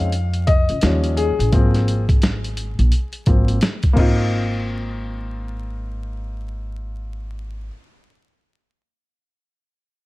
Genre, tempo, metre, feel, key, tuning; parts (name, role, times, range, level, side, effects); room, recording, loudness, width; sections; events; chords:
hip hop, jazz-hop; 86 BPM; 4/4; swing 62% on 16ths; Ab major; A4 = 444 Hz
warm upright piano; accompaniment; 0.0-7.7 s; F3 to F5; -24 LUFS; left 3 dB
upright bass; bass; 0.0-7.7 s; Ab1 to F2; -21 LUFS; equal
boom bap sampler-style drum kit; drums; 0.0-4.2 s; crash cymbal, hi-hat, kick drum, snare drum; -19 LUFS; equal
little or no reverb; dark, warm production, vinyl crackle; -16 LUFS; side -20 dB against mid
0.0-4.3 A section; 4.3-7.1 B section
upright piano solo 0.0-4.3
0.0 Bbmadd11 (rootless); 0.8 Eb7; 1.5 Ab69